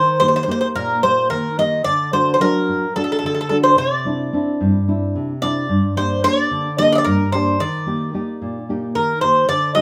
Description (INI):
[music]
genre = greek folk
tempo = 220 BPM (eighths)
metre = 7/8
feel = straight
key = unclear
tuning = A4 = 439 Hz
[part]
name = Greek bouzouki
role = melody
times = 0.0-9.8 s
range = A4 to Eb5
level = -19 LUFS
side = equal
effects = none
[part]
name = nylon-string guitar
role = accompaniment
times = 0.0-9.8 s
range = G2 to G4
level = -22 LUFS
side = equal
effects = none
[sound]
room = moderate studio reverb, RT60 0.6 s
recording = none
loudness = -18 LUFS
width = mono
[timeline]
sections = 0.0-9.5 A section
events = none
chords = 0.0 Eb; 1.9 D; 3.8 Cadd9; 5.7 Gm; 7.6 Eb